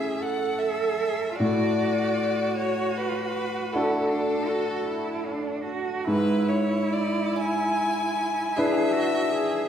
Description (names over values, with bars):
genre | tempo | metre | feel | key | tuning
classical, slow romantic movement for piano trio | 43-54 BPM (dotted quarters) | 12/8 | rubato | unclear | A4 = 440 Hz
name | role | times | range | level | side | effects
clear violin | melody | 0.0-9.7 s | A4 to G#5 | -28 LUFS | left 3 dB | none
rich cello | second line | 0.0-9.7 s | D4 to A4 | -28 LUFS | right 4 dB | none
bright concert grand piano | accompaniment | 0.0-9.7 s | G#2 to B4 | -27 LUFS | left 1 dB | none
room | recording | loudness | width
wet recital hall reverb, RT60 1.5 s | heard from further back in the room | -23 LUFS | side -9 dB against mid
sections
0.0-9.7 A section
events
none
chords
0.0 A; 1.4 D/A; 6.1 E7/G#